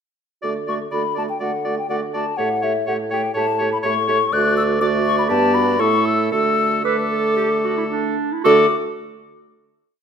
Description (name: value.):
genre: quick classical-period movement for wind quintet.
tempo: 111-126 BPM.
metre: 4/4.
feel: rubato.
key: D major.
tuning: A4 = 440 Hz.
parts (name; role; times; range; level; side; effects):
mellow hollow silver concert flute; melody; 0.4-8.7 s; E5 to F#6; -22 LUFS; left 6 dB; none.
bright oboe; second line; 0.4-8.7 s; A4 to D5; -25 LUFS; left 1 dB; none.
warm French horn; accompaniment; 0.4-8.7 s; A3 to B3; -25 LUFS; right 2 dB; none.
warm clarinet; accompaniment; 0.4-8.7 s; D4 to B4; -25 LUFS; right 8 dB; none.
mellow bassoon; bass; 0.4-8.7 s; D2 to D3; -22 LUFS; right 1 dB; none.
room: moderate recital hall reverb, RT60 1.3 s.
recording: none.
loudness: -17 LUFS.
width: side -7 dB against mid.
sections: 0.4-8.4 A section; 8.4-10.0 final chord.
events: none.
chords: 0.4 D; 2.4 A7; 4.3 D; 5.3 G; 5.8 A; 6.3 D.